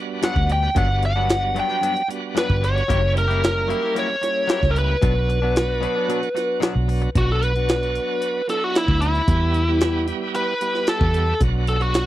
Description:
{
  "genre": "straight-eighth soul blues",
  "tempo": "113 BPM",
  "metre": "4/4",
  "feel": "straight",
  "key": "B harmonic minor",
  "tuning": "A4 = 436 Hz",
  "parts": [
    { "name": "bright tonewheel organ", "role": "accompaniment", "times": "0.0-12.1 s", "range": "F#3 to G4", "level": "-28 LUFS", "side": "right 6 dB", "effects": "slow rotary speaker, overdrive" },
    { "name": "biting lead guitar", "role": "melody", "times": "0.2-12.1 s", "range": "E4 to G5", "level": "-22 LUFS", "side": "equal", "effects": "overdrive" },
    { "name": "direct-recorded clean electric guitar", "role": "stabs", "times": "0.2-7.1 s", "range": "G2 to G4", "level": "-28 LUFS", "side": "left 9 dB", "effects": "none" },
    { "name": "jungle sampler-style drum kit", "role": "drums", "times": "0.2-12.1 s", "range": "hi-hat, kick drum, snare drum", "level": "-22 LUFS", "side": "equal", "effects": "none" },
    { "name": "vintage muted fingered electric bass", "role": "bass", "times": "0.4-12.1 s", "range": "F#1 to E2", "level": "-21 LUFS", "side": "equal", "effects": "none" }
  ],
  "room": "little or no reverb",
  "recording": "dry, close 1970s-style studio recording",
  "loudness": "-18 LUFS",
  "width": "side -14 dB against mid",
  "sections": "0.0-7.2 A section; 7.2-12.1 B section",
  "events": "lead electric guitar solo 7.2-12.1",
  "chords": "0.0 Gmaj7; 2.9 F#7b9; 5.0 Bm; 9.3 Em; 11.4 Bm"
}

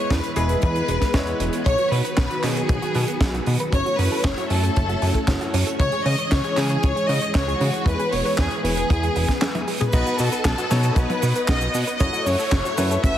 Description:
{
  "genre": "italo disco",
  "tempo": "116 BPM",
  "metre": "4/4",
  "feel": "straight",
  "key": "unclear",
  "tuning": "A4 = 439 Hz",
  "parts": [
    { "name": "rich studio violin section", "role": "melody", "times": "0.0-13.2 s", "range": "F#4 to E5", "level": "-25 LUFS", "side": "left 1 dB", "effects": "digital delay" },
    { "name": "string machine, full ensemble", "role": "sustained chords", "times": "0.0-13.2 s", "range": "D#3 to D#6", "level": "-28 LUFS", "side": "equal", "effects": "ensemble chorus" },
    { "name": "clear concert grand piano", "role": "stabs", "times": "0.0-1.6, 9.9-13.2 s", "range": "G#3 to D#5", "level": "-29 LUFS", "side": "left 2 dB", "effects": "digital delay" },
    { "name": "chorused synth bass", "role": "bass", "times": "0.1-13.2 s", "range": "E1 to C#3", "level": "-24 LUFS", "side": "equal", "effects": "tube saturation" },
    { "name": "kick drum", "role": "drums", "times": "0.1-13.1 s", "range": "none", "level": "-22 LUFS", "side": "equal", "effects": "none" },
    { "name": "tight funk drum kit", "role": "drums", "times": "0.1-13.1 s", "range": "cabasa, crash cymbal, handclaps, hi-hat, snare drum, toms", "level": "-27 LUFS", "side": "right 1 dB", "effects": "none" },
    { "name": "analog pluck", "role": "arpeggios", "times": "1.7-13.1 s", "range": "B3 to G#5", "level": "-31 LUFS", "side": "right 3 dB", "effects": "chorus, digital delay" }
  ],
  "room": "light reverb, small room ambience",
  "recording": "heavily compressed radio sound",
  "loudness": "-19 LUFS",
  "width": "side -11 dB against mid",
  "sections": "0.0-9.9 A section; 9.9-13.2 B section",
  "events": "break 9.4-9.9; drum fill 9.4-9.9",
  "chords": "0.0 E; 1.7 B; 3.7 F#m7; 5.8 C#m; 7.9 E; 9.9 B; 12.0 F#m7"
}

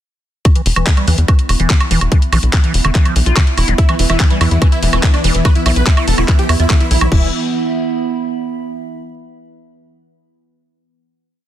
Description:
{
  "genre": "psychedelic trance",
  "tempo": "144 BPM",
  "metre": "4/4",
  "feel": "straight",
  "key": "unclear",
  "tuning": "A4 = 439 Hz",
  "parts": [
    { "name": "electronic kick drum", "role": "drums", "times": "0.5-7.2 s", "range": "none", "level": "-11 LUFS", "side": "equal", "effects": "none" },
    { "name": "garage drum kit", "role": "drums", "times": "0.5-7.2 s", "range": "crash cymbal, handclaps, hi-hat, woodblock", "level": "-19 LUFS", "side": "right 1 dB", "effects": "none" },
    { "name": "warbly tape-like pad", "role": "texture", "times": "0.8-8.7 s", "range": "B3 to B5", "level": "-23 LUFS", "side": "right 5 dB", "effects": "chorus, built-in reverb, sidechain pumping" },
    { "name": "liquid acid bass", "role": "riff", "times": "0.6-7.3 s", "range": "D3 to F4", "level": "-22 LUFS", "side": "equal", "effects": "phaser, auto-pan, sidechain pumping, ping-pong delay" },
    { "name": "tight sequencer bass", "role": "bass", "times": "0.7-7.3 s", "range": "E1 to E2", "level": "-14 LUFS", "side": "equal", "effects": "none" },
    { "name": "dense compressed supersaw", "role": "melody", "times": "3.8-7.3 s", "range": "E3 to B4", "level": "-21 LUFS", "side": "right 1 dB", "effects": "phaser, sidechain pumping, digital delay" },
    { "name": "evolving wavetable pad", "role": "sustained chords", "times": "4.6-7.2 s", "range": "E3 to B3", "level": "-25 LUFS", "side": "left 1 dB", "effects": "chorus, built-in reverb, sidechain pumping" },
    { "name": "formant-sweep wobble bass", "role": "second line", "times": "4.0-6.3 s", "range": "B3 to E4", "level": "-33 LUFS", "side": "right 3 dB", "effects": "none" }
  ],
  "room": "light reverb, digital ambience",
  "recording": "dense, heavily limited modern master",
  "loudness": "-11 LUFS",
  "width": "side -12 dB against mid",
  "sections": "0.5-7.1 drop; 7.1-8.8 final chord",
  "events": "drop 0.5-7.1",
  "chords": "0.5 E5"
}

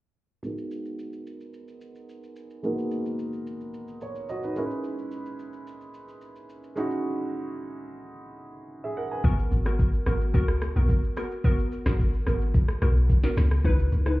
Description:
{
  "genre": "amapiano",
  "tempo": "109 BPM",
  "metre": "4/4",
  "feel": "straight",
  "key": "G# minor",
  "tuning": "A4 = 440 Hz",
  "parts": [
    { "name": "warm concert grand piano", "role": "accompaniment", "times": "0.4-9.4 s", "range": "G#3 to G#5", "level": "-32 LUFS", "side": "right 1 dB", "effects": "low-pass filter" },
    { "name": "afro-pop drum kit", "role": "drums", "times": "0.4-14.2 s", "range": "hi-hat, kick drum, rim click, shaker, snare drum", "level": "-25 LUFS", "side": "equal", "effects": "none" },
    { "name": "glassy wavetable pluck", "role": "stabs", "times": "9.2-14.2 s", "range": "B3 to B4", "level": "-31 LUFS", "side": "equal", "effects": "chorus, ping-pong delay" },
    { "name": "deep log drum bass", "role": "bass", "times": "9.2-14.2 s", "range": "G#1 to C#2", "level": "-23 LUFS", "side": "equal", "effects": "none" }
  ],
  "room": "little or no reverb",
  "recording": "heard muffled through a wall, club reverb, EQ",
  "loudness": "-24 LUFS",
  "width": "side -19 dB against mid",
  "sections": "0.4-9.2 A section; 9.2-14.2 B section",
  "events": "filter sweep on grand piano 0.4-9.2; drop 9.2-14.2",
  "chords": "0.4 G#m9; 4.6 C#m9; 9.2 G#m9; 13.4 C#m9"
}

